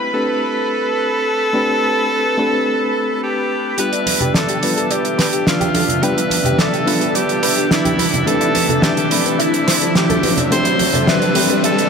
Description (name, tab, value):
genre	nu-disco, nu disco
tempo	107 BPM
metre	4/4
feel	straight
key	A minor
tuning	A4 = 440 Hz
part	reed electric piano	accompaniment	0.0-11.9 s	G3 to B5	-22 LUFS	left 1 dB	fast tremolo
part	lush unison pad	sustained chords	0.0-11.9 s	D4 to B5	-23 LUFS	equal	chorus
part	clear tenor saxophone	melody	0.1-11.9 s	E4 to C5	-19 LUFS	equal	low-pass filter, ping-pong delay
part	direct-recorded clean electric guitar	riff	3.8-11.7 s	D4 to E5	-25 LUFS	left 3 dB	ensemble chorus, low-pass filter
part	damped 70s drum kit	drums	3.8-11.9 s	hi-hat, snare drum	-18 LUFS	right 1 dB	none
part	riser	sound effects	6.9-11.9 s	none	-24 LUFS	left 1 dB	none
part	congas	percussion	4.1-11.0 s	none	-24 LUFS	right 2 dB	none
room	wet cathedral reverb, RT60 5.2 s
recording	dreamy mix soaked in reverb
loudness	-14 LUFS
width	side -6 dB against mid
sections	0.0-3.8 A section; 3.8-11.9 B section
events	build-up 3.8-11.9; filter sweep on clean electric guitar 3.8-11.9; riser 6.9-11.9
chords	0.0 Am11; 3.8 G7; 8.0 Am11